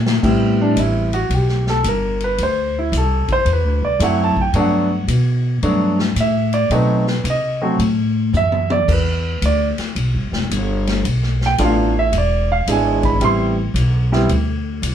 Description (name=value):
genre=jazz piano trio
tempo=111 BPM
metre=4/4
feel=swing 67% on 8ths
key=A minor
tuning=A4 = 440 Hz
part: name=warm grand piano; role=melody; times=0.0-14.3 s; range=F#3 to C6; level=-18 LUFS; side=right 2 dB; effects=none
part: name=upright bass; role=bass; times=0.0-14.9 s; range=E1 to C3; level=-18 LUFS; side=left 1 dB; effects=none
part: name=swinging big-band drum kit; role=drums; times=0.1-14.9 s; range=crash cymbal, hi-hat, kick drum, ride cymbal, snare drum, toms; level=-26 LUFS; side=left 2 dB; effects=none
room=wet club reverb, RT60 0.6 s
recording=heard from further back in the room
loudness=-15 LUFS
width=side -9 dB against mid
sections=0.2-14.9 A section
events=drum fill 0.0, 8.3-8.9; grand piano solo 0.2-14.9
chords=0.2 Am9; 2.4 D9; 4.5 Gmaj9; 6.7 B7b9; 8.9 Em7; 11.0 Bm7b5; 12.1 E7; 13.2 Am9